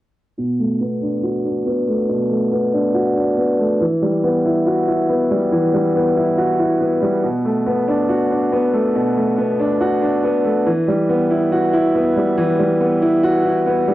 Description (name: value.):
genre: hip hop.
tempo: 140 BPM.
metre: 4/4.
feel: half-time.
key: B minor.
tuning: A4 = 439 Hz.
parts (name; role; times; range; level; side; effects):
dark grand piano; accompaniment; 0.4-13.9 s; B2 to F#4; -15 LUFS; equal; low-pass filter, cassette tape.
room: light reverb, studio reverb.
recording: home recording on cassette.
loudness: -15 LUFS.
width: side -15 dB against mid.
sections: 0.4-13.9 A section.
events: filter sweep on grand piano 0.4-13.9.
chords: 0.4 Bm7; 3.8 Emadd9; 7.2 Bm7; 10.7 Emadd9.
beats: | 0.38 0.81 1.23 1.66 | 2.09 2.52 2.95 3.38 | 3.81 4.23 4.66 5.09 | 5.52 5.95 6.38 6.81 | 7.23 7.66 8.09 8.52 | 8.95 9.38 9.81 10.23 | 10.66 11.09 11.52 11.95 | 12.38 12.81 13.23 13.66.